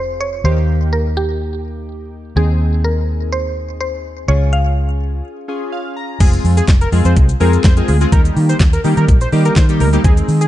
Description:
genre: dance-pop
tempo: 125 BPM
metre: 4/4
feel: straight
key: unclear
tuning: A4 = 440 Hz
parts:
  - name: mallet-like synth pluck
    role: melody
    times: 0.0-5.4 s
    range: G4 to F5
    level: -22 LUFS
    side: right 1 dB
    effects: chorus, digital delay
  - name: chorused retro synth keys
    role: accompaniment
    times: 0.0-10.5 s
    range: G3 to Bb5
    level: -22 LUFS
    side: left 1 dB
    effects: sidechain pumping
  - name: vintage muted fingered electric bass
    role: bass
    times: 0.0-10.5 s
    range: F1 to Eb3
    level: -15 LUFS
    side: equal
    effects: sidechain pumping
  - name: octave-doubled lead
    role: melody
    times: 6.2-10.5 s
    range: Ab4 to C5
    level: -22 LUFS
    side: equal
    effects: chorus, sidechain pumping, digital delay
  - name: pop drum kit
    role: drums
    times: 6.2-10.5 s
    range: crash cymbal, handclaps, hi-hat, kick drum, shaker, snare drum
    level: -13 LUFS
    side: equal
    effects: none
room: little or no reverb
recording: dark, warm production, nothing above 10.3 kHz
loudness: -12 LUFS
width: side -14 dB against mid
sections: 0.0-6.2 A section; 6.2-10.5 B section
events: break 5.2-6.2; synth keys fill 5.5-6.2; drop 6.2-10.5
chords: 0.4 Eb; 2.4 Ab/Eb; 4.3 Db; 6.2 Fm; 8.1 Eb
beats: | 0.44 0.92 1.40 1.88 | 2.36 2.84 3.32 3.80 | 4.28 4.76 5.24 5.72 | 6.20 6.68 7.16 7.64 | 8.12 8.60 9.08 9.56 | 10.04

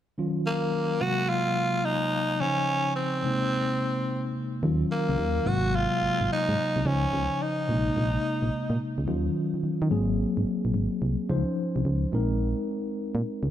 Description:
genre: R&B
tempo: 108 BPM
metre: 4/4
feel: swing 66% on 16ths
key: Eb dorian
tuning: A4 = 440 Hz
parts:
  - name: mellow tine electric piano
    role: accompaniment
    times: 0.2-13.5 s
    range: C3 to C5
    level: -28 LUFS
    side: left 1 dB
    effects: medium stereo tremolo
  - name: growling tenor saxophone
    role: melody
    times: 0.5-8.8 s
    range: Bb3 to Gb4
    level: -27 LUFS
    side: equal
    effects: none
  - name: solid FM bass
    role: bass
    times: 4.6-13.5 s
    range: Ab1 to Eb3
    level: -27 LUFS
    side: right 1 dB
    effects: none
room: moderate echo chamber reverb, RT60 2.1 s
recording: none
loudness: -24 LUFS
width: side -11 dB against mid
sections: 0.2-9.1 A section; 9.1-13.5 B section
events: none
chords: 0.2 Ebm9; 1.0 Ab9; 2.4 Dbmaj9; 3.2 Bb9sus4; 4.6 Ebm9; 5.5 Ab9; 6.9 Dbmaj9; 7.7 Bb9sus4; 9.1 Ebm9; 9.9 Ab9; 11.3 Dbmaj9; 12.1 Bb9sus4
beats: | 0.18 0.74 1.29 1.85 | 2.41 2.96 3.52 4.07 | 4.63 5.18 5.74 6.29 | 6.85 7.41 7.96 8.52 | 9.07 9.63 10.18 10.74 | 11.29 11.85 12.41 12.96

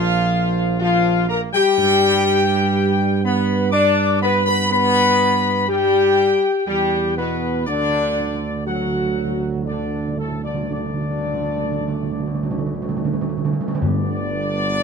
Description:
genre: classical, ceremonial fanfare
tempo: 60 BPM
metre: 3/4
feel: straight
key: unclear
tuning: A4 = 440 Hz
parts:
  - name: warm trumpet section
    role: melody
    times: 0.0-14.8 s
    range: A4 to D6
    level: -22 LUFS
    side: left 1 dB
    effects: none
  - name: bright trombone section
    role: sustained chords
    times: 0.0-14.8 s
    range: A2 to D4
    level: -25 LUFS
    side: right 1 dB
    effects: none
  - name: mellow French horn section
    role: sustained chords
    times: 0.0-14.8 s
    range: A3 to D5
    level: -21 LUFS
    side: left 4 dB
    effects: none
  - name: mellow tuba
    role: bass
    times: 0.0-14.8 s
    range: G1 to G2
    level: -23 LUFS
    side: right 5 dB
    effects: none
  - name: timpani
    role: percussion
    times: 7.7-14.8 s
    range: G2 to D3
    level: -24 LUFS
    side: right 2 dB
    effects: none
room: light reverb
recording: close, detailed microphones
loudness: -17 LUFS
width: side -5 dB against mid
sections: 0.0-13.8 A section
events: timpani fill 7.7-13.8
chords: 0.0 Bb5; 1.8 G; 7.7 D; 13.8 G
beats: 0.80 | 1.78 2.75 3.73 | 4.70 5.68 6.68 | 7.67 8.66 9.67 | 10.71 11.76 12.79 | 13.84

